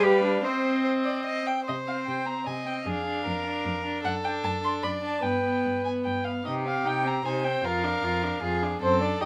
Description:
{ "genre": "quick classical-period movement for string quartet", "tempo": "152 BPM", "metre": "3/4", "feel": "straight", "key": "C minor", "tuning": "A4 = 442 Hz", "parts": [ { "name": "dark violin", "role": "melody", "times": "0.0-9.3 s", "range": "C5 to C6", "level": "-34 LUFS", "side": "equal", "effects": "none" }, { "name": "warm violin", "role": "second line", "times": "0.0-9.3 s", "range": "G4 to G5", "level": "-32 LUFS", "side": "equal", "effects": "none" }, { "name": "rich viola", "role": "accompaniment", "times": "0.0-9.3 s", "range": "G3 to F4", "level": "-33 LUFS", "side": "equal", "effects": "none" }, { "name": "rich cello", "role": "bass", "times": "0.0-9.3 s", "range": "F2 to G4", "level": "-33 LUFS", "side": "equal", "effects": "none" } ], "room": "moderate studio ambience, RT60 0.5 s", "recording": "none", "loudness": "-28 LUFS", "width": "mono", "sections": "0.0-1.7 A section; 1.7-9.3 A section", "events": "none", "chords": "0.0 G7; 0.4 Cm; 2.9 Ddim/F; 4.0 D/F#; 5.2 G; 6.5 Cm; 7.6 Ddim/F; 8.8 D7/F#", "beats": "0.04 | 0.45 0.86 1.27 | 1.68 2.08 2.48 | 2.87 3.26 3.65 | 4.05 4.44 4.83 | 5.24 5.64 6.05 | 6.46 6.86 7.25 | 7.65 8.04 8.43 | 8.81 9.21" }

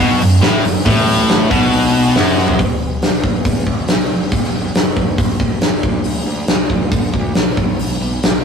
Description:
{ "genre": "hard rock", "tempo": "138 BPM", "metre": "4/4", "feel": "straight", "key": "unclear", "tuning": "A4 = 440 Hz", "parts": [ { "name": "cranked stack guitar", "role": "riff", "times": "0.0-2.6 s", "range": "F#2 to B2", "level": "-15 LUFS", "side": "left 3 dB", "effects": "overdrive" }, { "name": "high-gain distorted guitar", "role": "riff", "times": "0.0-2.6 s", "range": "F#2 to B2", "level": "-18 LUFS", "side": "right 2 dB", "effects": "distortion" }, { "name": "scooped high-gain guitar", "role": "riff", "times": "0.0-2.6 s", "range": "F#2 to B2", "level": "-21 LUFS", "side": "right 4 dB", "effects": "none" }, { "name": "fuzz fingered electric bass", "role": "bass", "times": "0.0-8.4 s", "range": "E1 to D3", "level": "-24 LUFS", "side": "right 1 dB", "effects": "overdrive" }, { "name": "big rock drum kit", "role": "drums", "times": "0.2-8.3 s", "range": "hi-hat, kick drum, snare drum, toms", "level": "-15 LUFS", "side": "equal", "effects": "none" } ], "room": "light reverb", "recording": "rough rehearsal-room recording, warm saturation", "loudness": "-13 LUFS", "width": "side -6 dB against mid", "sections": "0.0-2.6 A section; 2.6-8.4 B section", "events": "drum fill 2.4", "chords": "0.0 F#m; 2.6 E5; 4.3 N.C.", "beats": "0.42 | 0.86 1.29 1.72 2.15 | 2.59 3.02 3.45 3.89 | 4.32 4.76 5.19 5.62 | 6.06 6.49 6.93 7.36 | 7.80 8.23" }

